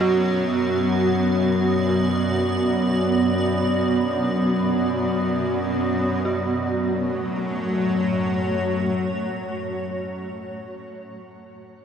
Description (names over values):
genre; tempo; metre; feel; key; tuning
dark ambient drone; free time; none; none; F# minor; A4 = 441 Hz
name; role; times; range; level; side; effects
granular cloud pad; sustained chords; 0.0-10.2 s; A3 to D5; -23 LUFS; right 2 dB; built-in reverb
dark detuned synth bell; arpeggios; 0.0-11.8 s; F#4; -30 LUFS; right 4 dB; none
bowed-like drone; drone; 0.0-9.8 s; F#2 to F#3; -24 LUFS; left 2 dB; built-in reverb
room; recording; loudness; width
wet cathedral reverb, RT60 6.4 s; none; -20 LUFS; side -8 dB against mid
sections
0.0-6.2 A section; 6.2-11.2 B section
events
none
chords
0.0 D6; 6.2 F#m